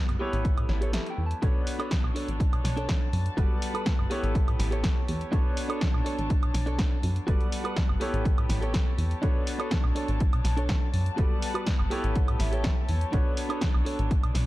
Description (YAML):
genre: filtered disco house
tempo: 123 BPM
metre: 4/4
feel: straight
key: B minor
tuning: A4 = 439 Hz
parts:
  - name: bright concert grand piano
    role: accompaniment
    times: 0.0-14.5 s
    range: G3 to D5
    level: -35 LUFS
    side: left 1 dB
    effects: phaser, sidechain pumping, low-pass filter
  - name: direct-recorded clean electric guitar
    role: riff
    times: 0.0-14.4 s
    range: D4 to A5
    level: -37 LUFS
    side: right 1 dB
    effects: sidechain pumping, low-pass filter
  - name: plucky analog bass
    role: bass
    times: 0.1-14.5 s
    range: G1 to B2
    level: -28 LUFS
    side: equal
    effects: sidechain pumping, low-pass filter
  - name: punchy analog drum machine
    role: drums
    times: 0.1-14.5 s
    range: hi-hat, snare drum, woodblock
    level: -35 LUFS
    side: right 1 dB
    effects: sidechain pumping on hats, sidechain pumping on perc
  - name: electronic kick drum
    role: drums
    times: 0.4-14.2 s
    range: none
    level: -26 LUFS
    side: equal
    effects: none
  - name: warm studio string section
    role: sustained chords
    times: 1.4-14.5 s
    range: D4 to A5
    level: -38 LUFS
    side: equal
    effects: sidechain pumping, low-pass filter
room: digital ambience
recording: dark, warm production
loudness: -24 LUFS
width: side -17 dB against mid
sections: 0.0-14.5 A section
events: clean electric guitar fill 0.5-1.4, 11.7-13.1; break 0.9-1.4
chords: 0.2 A7; 1.4 Bm9; 3.4 Gmaj9; 4.1 A7; 5.3 Bm9; 7.3 Gmaj9; 8.0 A7; 9.2 Bm9; 11.2 Gmaj9; 11.9 A7; 13.1 Bm9